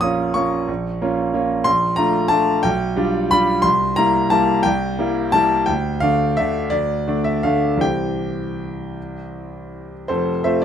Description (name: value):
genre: classical, piano waltz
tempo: 153-194 BPM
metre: 3/4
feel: rubato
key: unclear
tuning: A4 = 440 Hz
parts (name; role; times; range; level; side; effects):
- bright concert grand piano; solo; 0.0-10.6 s; F1 to Eb6; -17 LUFS; equal; none
room: light reverb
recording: none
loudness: -16 LUFS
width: side -8 dB against mid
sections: 0.0-10.1 A section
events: none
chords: 0.0 Bbm; 1.7 Bbmaj7; 2.6 G7/B; 3.6 C7; 5.7 Dm; 7.8 C; 10.1 F